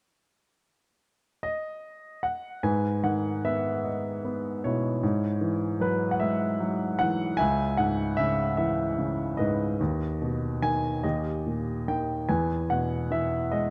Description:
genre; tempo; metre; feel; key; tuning
classical, lyrical solo piano; 50 BPM (dotted quarters); 6/8; rubato; G# minor; A4 = 440 Hz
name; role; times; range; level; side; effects
clear baby grand piano; solo; 1.4-13.7 s; C#2 to G#5; -28 LUFS; equal; none
room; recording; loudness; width
light reverb; dark, warm production; -28 LUFS; mono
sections
0.2-2.6 A section; 2.6-13.7 B section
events
none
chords
0.2 N.C.; 2.6 G#m; 5.0 Eadd9/G#; 7.4 C#m; 9.8 G#m/D#; 11.0 D#; 12.3 E

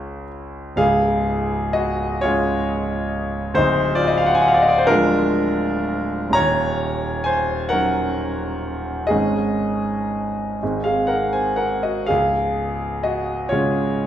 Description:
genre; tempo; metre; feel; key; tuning
classical, romantic nocturne for solo piano; 37-46 BPM (dotted quarters); 6/8; rubato; Db major; A4 = 440 Hz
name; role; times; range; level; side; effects
clear concert grand piano; solo; 0.0-14.1 s; Db1 to Db6; -18 LUFS; equal; none
room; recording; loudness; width
wet recital hall reverb, RT60 1.3 s; minimal, uncompressed stereo recording; -18 LUFS; side -10 dB against mid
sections
0.8-14.1 A section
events
none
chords
0.0 Db; 3.6 Bb7/D; 6.4 Ebm7; 9.1 Absus4; 10.6 Ab; 12.1 Db

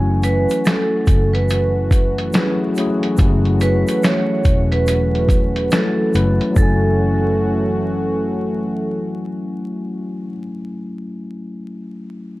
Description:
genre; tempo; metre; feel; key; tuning
lo-fi hip hop; 71 BPM; 4/4; swing 62% on 16ths; F# minor; A4 = 440 Hz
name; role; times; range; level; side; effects
mellow tine electric piano; accompaniment; 0.0-12.4 s; F#3 to G#5; -21 LUFS; left 2 dB; cassette tape
warm analog pad; sustained chords; 0.0-10.3 s; E3 to F#4; -27 LUFS; right 1 dB; chorus
vintage muted fingered electric bass; bass; 0.0-10.3 s; E1 to F#1; -19 LUFS; equal; none
vibraphone with hard mallets; melody; 0.2-9.1 s; A4 to C#5; -22 LUFS; right 3 dB; none
lo-fi sampler-style drum kit; drums; 0.2-6.8 s; hi-hat, kick drum, snare drum; -18 LUFS; equal; none
egg shaker; percussion; 0.2-7.0 s; none; -40 LUFS; right 7 dB; none
room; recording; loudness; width
little or no reverb; vinyl crackle; -15 LUFS; side -18 dB against mid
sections
0.0-6.6 A section; 6.6-9.9 B section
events
none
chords
0.0 F#m9; 3.2 F#m7

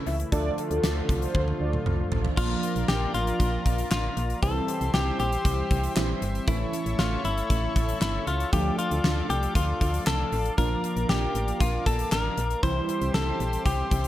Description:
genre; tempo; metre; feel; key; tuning
synth-pop; 117 BPM; 4/4; straight; D minor; A4 = 444 Hz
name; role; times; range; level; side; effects
warm analog keys; accompaniment; 0.0-14.1 s; E3 to A4; -32 LUFS; right 3 dB; chorus, dub echo
brassy analog pad; sustained chords; 0.0-14.1 s; C#3 to D6; -35 LUFS; left 1 dB; chorus
mellow synth brass; second line; 0.1-1.7 s; A4 to E5; -33 LUFS; equal; chorus, dub echo
solid FM bass; bass; 0.1-14.1 s; G1 to D2; -28 LUFS; equal; none
gated 80s drum kit; drums; 0.1-14.1 s; crash cymbal, handclaps, hi-hat, kick drum, snare drum, toms; -28 LUFS; equal; none
direct-recorded clean electric guitar; melody; 2.4-14.1 s; E4 to C5; -29 LUFS; left 3 dB; dub echo
room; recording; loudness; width
light reverb, small room ambience; echo-heavy mix; -23 LUFS; side -13 dB against mid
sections
0.0-2.4 A section; 2.4-14.1 B section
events
drum fill 1.3-2.4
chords
0.3 Dm; 2.4 Bb; 4.4 C; 6.5 A; 8.5 Dm; 10.6 Bb; 12.6 C

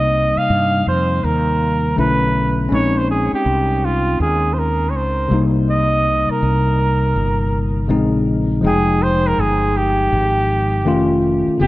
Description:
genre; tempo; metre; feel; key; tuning
hip hop, jazz-hop; 81 BPM; 4/4; swing 64% on 16ths; unclear; A4 = 440 Hz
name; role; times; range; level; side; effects
clear flugelhorn; melody; 0.0-11.7 s; F4 to F5; -19 LUFS; right 2 dB; tape echo
tine electric piano; accompaniment; 0.0-11.7 s; C3 to G5; -19 LUFS; left 2 dB; overdrive
fretless electric bass; bass; 0.0-11.7 s; F1 to G2; -20 LUFS; equal; none
room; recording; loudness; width
moderate spring reverb, RT60 1.7 s, small room ambience; echo-heavy mix; -14 LUFS; side -17 dB against mid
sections
0.0-8.6 A section; 8.6-11.7 B section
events
none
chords
0.0 Cm7; 2.0 Bm11; 2.7 Bbm11; 5.3 Cm7; 7.9 Bbm11; 8.6 Fm9; 10.9 F7b13

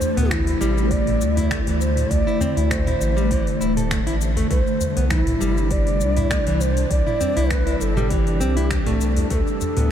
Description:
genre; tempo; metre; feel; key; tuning
organic downtempo; 100 BPM; 4/4; swing 54% on 16ths; unclear; A4 = 440 Hz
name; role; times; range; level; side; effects
breathy mellow low Native American-style wooden flute; melody; 0.0-9.9 s; E4 to D5; -26 LUFS; right 2 dB; ping-pong delay
ethereal airy pad; sustained chords; 0.0-9.9 s; C3 to E4; -25 LUFS; left 2 dB; ensemble chorus, built-in reverb, sidechain pumping
afro-pop drum kit; drums; 0.0-9.9 s; finger snaps, hi-hat, shaker, toms; -29 LUFS; equal; none
udu; percussion; 0.0-9.7 s; none; -27 LUFS; left 1 dB; none
nylon-string guitar; arpeggios; 0.2-9.9 s; E3 to A4; -27 LUFS; equal; analog delay
round analog bass; bass; 0.2-9.9 s; D1 to D2; -22 LUFS; equal; sidechain pumping
electronic kick drum; drums; 0.3-9.4 s; none; -24 LUFS; equal; none
room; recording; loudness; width
moderate huge ambient reverb, RT60 8.8 s; dreamy mix soaked in reverb; -18 LUFS; side -9 dB against mid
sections
0.0-9.9 A section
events
none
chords
0.0 D9sus4; 4.5 Cadd9; 9.3 Dsus2

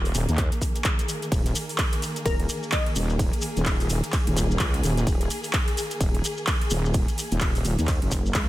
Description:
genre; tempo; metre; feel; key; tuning
bass house; 128 BPM; 4/4; swing 60% on 16ths; unclear; A4 = 439 Hz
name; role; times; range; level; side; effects
dark studio string section; sustained chords; 0.0-8.5 s; Eb3 to Ab4; -33 LUFS; equal; sidechain pumping
wobble bass; bass; 0.0-8.5 s; Eb1 to Eb2; -25 LUFS; equal; chorus, tube saturation, sidechain pumping
big-room dance drum kit; drums; 0.1-8.5 s; handclaps, hi-hat, ride cymbal; -30 LUFS; right 1 dB; overdrive, studio reverb
maracas; percussion; 0.1-8.5 s; none; -34 LUFS; left 1 dB; none
electronic kick drum; drums; 0.4-8.5 s; none; -25 LUFS; equal; overdrive, studio reverb
glassy wavetable pluck; melody; 2.3-3.2 s; Bb4 to Eb5; -31 LUFS; left 2 dB; chorus, ping-pong delay
room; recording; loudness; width
digital ambience; none; -22 LUFS; side -16 dB against mid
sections
0.0-8.5 A section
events
none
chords
0.0 Eb5

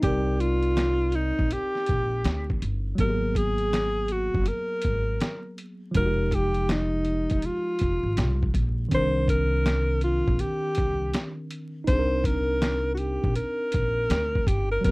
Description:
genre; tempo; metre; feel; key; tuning
hip hop, jazz-hop; 81 BPM; 4/4; swing 65% on 16ths; C minor; A4 = 440 Hz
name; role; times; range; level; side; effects
mellow alto saxophone; melody; 0.0-14.9 s; Eb4 to C5; -27 LUFS; equal; none
tine electric piano; accompaniment; 0.0-14.9 s; Eb3 to D5; -32 LUFS; equal; overdrive, fast stereo tremolo
upright bass; bass; 0.0-14.9 s; F1 to D2; -27 LUFS; equal; none
trip hop sampler-style drum kit; drums; 0.0-14.9 s; hi-hat, kick drum, snare drum; -28 LUFS; equal; overdrive
room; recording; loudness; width
little or no reverb; dry, close 1970s-style studio recording, vinyl crackle; -23 LUFS; side -25 dB against mid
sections
0.0-8.9 A section; 8.9-14.9 B section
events
none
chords
0.0 Cm9; 3.0 Abm9; 6.0 Fm9; 8.9 Cm9

